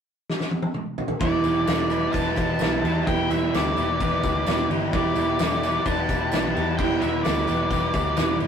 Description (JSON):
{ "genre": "rock, shoegaze and dream pop", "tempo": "129 BPM", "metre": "4/4", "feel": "straight", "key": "E minor", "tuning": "A4 = 439 Hz", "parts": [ { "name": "loose indie drum kit", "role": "drums", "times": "0.3-8.5 s", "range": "crash cymbal, kick drum, snare drum, toms", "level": "-27 LUFS", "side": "equal", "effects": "none" }, { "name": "octave-fuzz lead guitar", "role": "melody", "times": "1.2-8.4 s", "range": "D5 to A5", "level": "-27 LUFS", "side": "left 1 dB", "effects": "distortion, digital delay" }, { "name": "chorused pulse-width pad", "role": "sustained chords", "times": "1.6-8.5 s", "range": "G4 to B5", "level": "-34 LUFS", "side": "left 2 dB", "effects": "none" }, { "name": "electric guitar through a small old amp", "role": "arpeggios", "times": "1.2-8.5 s", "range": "E4 to B4", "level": "-29 LUFS", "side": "right 3 dB", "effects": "none" }, { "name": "overdriven semi-hollow guitar", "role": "riff", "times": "1.2-8.5 s", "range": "E2 to E4", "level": "-29 LUFS", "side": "left 6 dB", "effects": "none" }, { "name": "overdriven semi-hollow guitar", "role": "riff", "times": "1.2-8.5 s", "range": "E3 to E4", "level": "-28 LUFS", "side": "right 5 dB", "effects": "none" }, { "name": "vintage muted picked electric bass", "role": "bass", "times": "1.2-8.5 s", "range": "E1 to E2", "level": "-30 LUFS", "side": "left 1 dB", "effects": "none" }, { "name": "tambourine", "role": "percussion", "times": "1.4-8.5 s", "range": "none", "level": "-45 LUFS", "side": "right 6 dB", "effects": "none" } ], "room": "wet studio reverb, RT60 0.6 s", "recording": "rough rehearsal-room recording, warm saturation", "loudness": "-21 LUFS", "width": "side -7 dB against mid", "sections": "0.0-1.2 A section; 1.2-8.5 B section", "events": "drum fill 0.3-1.2", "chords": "0.0 N.C.; 1.2 Em7" }